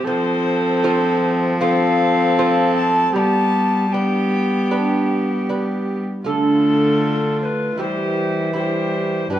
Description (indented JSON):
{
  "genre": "classical, renaissance-style consort dance",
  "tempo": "78 BPM",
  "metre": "4/4",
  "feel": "straight",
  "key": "G mixolydian",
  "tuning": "A4 = 439 Hz",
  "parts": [
    { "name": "alto recorder", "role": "melody", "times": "0.0-9.4 s", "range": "A4 to B5", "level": "-22 LUFS", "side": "left 3 dB", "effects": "none" },
    { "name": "rich viola", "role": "second line", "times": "0.0-9.4 s", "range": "F4 to A4", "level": "-23 LUFS", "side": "right 4 dB", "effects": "none" },
    { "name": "lute", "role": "accompaniment", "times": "0.0-9.4 s", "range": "G2 to C5", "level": "-24 LUFS", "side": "right 2 dB", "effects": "none" },
    { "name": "warm viola", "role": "accompaniment", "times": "0.0-9.4 s", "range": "G3 to C4", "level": "-23 LUFS", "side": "left 2 dB", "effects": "none" },
    { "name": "rich cello", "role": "bass", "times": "0.0-9.4 s", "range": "G2 to G3", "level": "-22 LUFS", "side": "equal", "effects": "none" }
  ],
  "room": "wet stone room reverb, RT60 1.4 s",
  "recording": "worn, warbling old tape, cassette tape, warbly pitch drift",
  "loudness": "-16 LUFS",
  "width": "side -12 dB against mid",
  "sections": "0.0-6.3 A section; 6.3-9.4 B section",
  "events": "none",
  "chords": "0.1 F; 3.1 G; 6.3 Dm; 7.8 C/E"
}